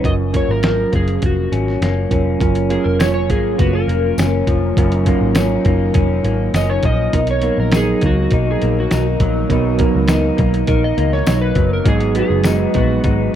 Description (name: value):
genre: indie pop, bedroom pop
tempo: 102 BPM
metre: 4/4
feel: straight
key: F# major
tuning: A4 = 440 Hz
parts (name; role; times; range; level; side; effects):
- electric guitar through a small old amp; accompaniment; 0.0-13.4 s; F#2 to D#4; -22 LUFS; left 6 dB; analog chorus, warbly pitch drift
- mellow tine electric piano; accompaniment; 0.0-13.4 s; F#3 to A#4; -21 LUFS; right 6 dB; none
- vintage muted picked electric bass; bass; 0.0-13.3 s; E#1 to C#2; -19 LUFS; equal; none
- lo-fi sampler-style drum kit; drums; 0.0-13.2 s; hi-hat, kick drum, snare drum; -18 LUFS; equal; overdrive
- electric slide guitar; melody; 0.1-13.4 s; F#4 to D#5; -22 LUFS; equal; lush chorus, digital delay
- string machine, cellos; sustained chords; 2.4-13.4 s; F#3 to B4; -25 LUFS; left 1 dB; ensemble chorus
- tambourine; percussion; 3.0-12.6 s; none; -34 LUFS; left 5 dB; none
room: digital ambience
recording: rough home demo mix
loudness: -14 LUFS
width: side -10 dB against mid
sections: 0.0-2.4 A section; 2.4-13.4 B section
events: electric slide guitar solo 2.4-13.4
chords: 0.0 F#maj7; 7.1 Bmaj7; 11.9 G#m7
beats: | 0.04 0.64 1.23 1.82 | 2.41 3.00 3.59 4.18 | 4.77 5.36 5.95 6.54 | 7.13 7.72 8.31 8.91 | 9.50 10.09 10.68 11.27 | 11.86 12.45 13.04